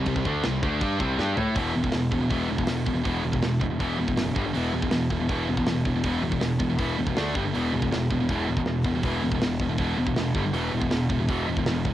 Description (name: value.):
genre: heavy metal.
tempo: 161 BPM.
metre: 4/4.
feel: straight.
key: E minor.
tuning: A4 = 441 Hz.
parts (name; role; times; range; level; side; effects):
distorted electric guitar; riff; 0.0-11.9 s; E2 to A4; -29 LUFS; left 6 dB; distortion, cassette tape.
scooped high-gain guitar; riff; 0.0-11.9 s; E2 to A4; -28 LUFS; right 6 dB; distortion, cassette tape.
fuzz picked electric bass; bass; 0.0-11.9 s; E1 to A2; -28 LUFS; equal; overdrive.
tight metal drum kit; drums; 0.1-11.9 s; crash cymbal, hi-hat, kick drum, snare drum, toms; -30 LUFS; equal; cassette tape.
room: light reverb.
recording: home recording on cassette.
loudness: -23 LUFS.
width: side -13 dB against mid.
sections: 0.0-1.6 A section; 1.6-11.9 B section.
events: drum fill 1.2-1.6.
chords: 0.0 C5; 1.6 E5; 4.4 G5; 4.5 E5; 7.2 D5; 7.4 G5; 7.5 E5; 10.4 G5; 10.5 E5.